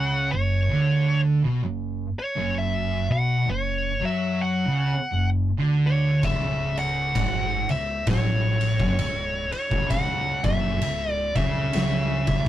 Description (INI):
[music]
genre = stoner and doom metal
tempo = 65 BPM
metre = 4/4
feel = swing 59% on 8ths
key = C# phrygian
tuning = A4 = 440 Hz
[part]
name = fuzz lead guitar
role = melody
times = 0.0-12.5 s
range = C#5 to F#5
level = -27 LUFS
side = left 1 dB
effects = distortion
[part]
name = thick fuzz guitar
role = riff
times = 0.0-12.5 s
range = C#2 to F#3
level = -26 LUFS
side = equal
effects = distortion
[part]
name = thick fuzz guitar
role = riff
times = 0.0-12.5 s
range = C#2 to F#3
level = -27 LUFS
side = right 3 dB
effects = distortion
[part]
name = upright bass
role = bass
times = 0.0-12.5 s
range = C#1 to F#2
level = -34 LUFS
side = equal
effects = overdrive
[part]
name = oversized low-tuned drum kit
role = drums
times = 6.2-12.5 s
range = kick drum, ride cymbal, snare drum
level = -28 LUFS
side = equal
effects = none
[sound]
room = wet booth ambience, RT60 0.2 s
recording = rough rehearsal-room recording, tube saturation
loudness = -21 LUFS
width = side -12 dB against mid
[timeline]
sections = 0.0-12.5 A section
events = none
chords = 0.0 F#5; 6.2 C#m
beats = 0.70 1.62 | 2.55 3.47 4.39 5.31 | 6.23 7.15 8.07 8.99 | 9.91 10.82 11.74